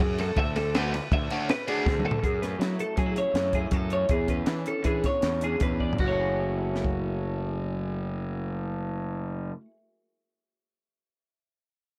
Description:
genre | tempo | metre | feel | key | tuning
math rock and midwest emo | 160 BPM | 5/4 | straight | F# minor | A4 = 440 Hz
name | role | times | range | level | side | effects
twelve-string electric guitar | arpeggios | 0.0-9.7 s | F#4 to F#5 | -32 LUFS | equal | spring reverb
overdriven electric guitar | riff | 0.0-2.1 s | D3 to F#4 | -34 LUFS | equal | none
fuzz fingered electric bass | bass | 0.0-9.5 s | F#1 to F#3 | -33 LUFS | equal | overdrive
compact cocktail drum kit | drums | 0.0-6.9 s | crash cymbal, hi-hat, kick drum, ride cymbal, snare drum, toms | -31 LUFS | equal | none
electric guitar through a small old amp | accompaniment | 2.2-9.8 s | E2 to G#4 | -39 LUFS | equal | spring reverb
room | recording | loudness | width
light reverb | none | -28 LUFS | mono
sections
0.0-2.2 A section; 2.2-6.0 B section; 6.0-9.8 C section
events
drum fill 1.9-2.2, 5.8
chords
0.4 D69; 2.2 F#m9; 4.1 E6; 6.0 F#m9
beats
| 0.37 0.74 1.11 1.49 1.86 | 2.24 2.61 2.99 3.36 3.74 | 4.11 4.49 4.86 5.24 5.62 | 5.99 6.37 6.74 7.12 7.50 | 7.87 8.25 8.62 9.00 9.38

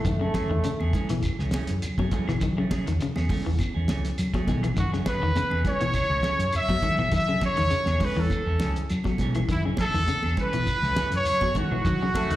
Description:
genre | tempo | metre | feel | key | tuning
afrobeat | 102 BPM | 4/4 | straight | F# dorian | A4 = 439 Hz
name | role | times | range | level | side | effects
clear trombone section | second line | 0.0-1.2, 12.1-12.4 s | A3 | -30 LUFS | equal | slapback echo
cloth-damped thuddy drum kit | drums | 0.0-12.4 s | hi-hat, kick drum, snare drum | -30 LUFS | equal | none
electric guitar at the edge of break-up | arpeggios | 0.1-12.4 s | C#3 to F#3 | -31 LUFS | left 4 dB | slapback echo
fingered electric bass | bass | 0.1-12.4 s | C#2 to F#3 | -27 LUFS | equal | none
shekere | percussion | 0.1-12.3 s | none | -34 LUFS | equal | none
semi-hollow electric guitar | stabs | 0.2-12.3 s | E3 to G#4 | -36 LUFS | right 5 dB | wide subtle chorus, slapback echo
claves | percussion | 0.3-12.3 s | none | -44 LUFS | right 1 dB | slapback echo
congas | percussion | 0.3-12.3 s | none | -34 LUFS | right 2 dB | slapback echo
clear trumpet | melody | 4.8-12.4 s | E4 to E5 | -27 LUFS | left 1 dB | slapback echo
brilliant trumpet | second line | 4.8-12.4 s | E4 to E5 | -32 LUFS | right 4 dB | slapback echo
room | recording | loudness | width
small room ambience | live gig heard through the venue's PA, recital hall reverb | -22 LUFS | side -14 dB against mid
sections
0.0-12.4 A section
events
none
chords
0.0 F#m9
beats
| 0.06 0.65 1.24 1.83 | 2.42 3.01 3.60 4.19 | 4.78 5.37 5.96 6.54 | 7.13 7.72 8.31 8.90 | 9.49 10.08 10.67 11.26 | 11.85

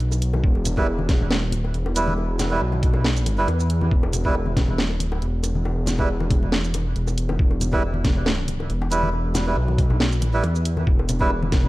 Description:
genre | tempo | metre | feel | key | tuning
deep dubstep | 138 BPM | 4/4 | swing 54% on 16ths, half-time | E minor | A4 = 440 Hz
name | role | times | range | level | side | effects
dark detuned saw bass | bass | 0.0-11.7 s | E1 to E2 | -22 LUFS | equal | none
garage drum kit | drums | 0.0-11.6 s | hi-hat, shaker, snare drum | -26 LUFS | right 1 dB | none
bongos and congas | percussion | 0.1-11.7 s | none | -30 LUFS | left 2 dB | dub echo
electronic kick drum | drums | 0.4-11.6 s | none | -20 LUFS | equal | none
melodica | stabs | 0.8-11.3 s | G3 to B4 | -27 LUFS | right 2 dB | dub echo
room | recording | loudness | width
little or no reverb | dark, warm production | -19 LUFS | side -18 dB against mid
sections
0.0-11.7 A section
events
none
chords
0.0 E5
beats
0.00 | 0.44 0.87 1.30 1.74 | 2.17 2.61 3.04 3.48 | 3.91 4.35 4.78 5.22 | 5.65 6.09 6.52 6.96 | 7.39 7.83 8.26 8.70 | 9.13 9.57 10.00 10.44 | 10.87 11.30

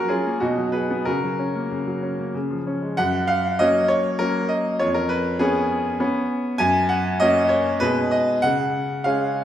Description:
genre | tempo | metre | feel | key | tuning
classical-period piano sonatina | 91-101 BPM | 3/4 | rubato | F# major | A4 = 440 Hz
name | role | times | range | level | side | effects
bright grand piano | solo | 0.0-9.4 s | E#2 to G#5 | -19 LUFS | equal | none
room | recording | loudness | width
wet recital hall reverb, RT60 1.5 s | heard from further back in the room | -19 LUFS | side -11 dB against mid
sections
0.0-3.0 A section; 3.0-9.4 B section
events
none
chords
0.4 B; 1.1 F#/C#; 2.3 C#; 3.0 F#; 4.8 C#7/E#; 6.6 F#; 7.8 G#m/B; 8.4 C#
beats
0.42 | 1.07 1.72 2.35 | 2.98 3.60 4.20 | 4.80 5.40 5.99 | 6.59 7.20 7.82 | 8.43 9.05

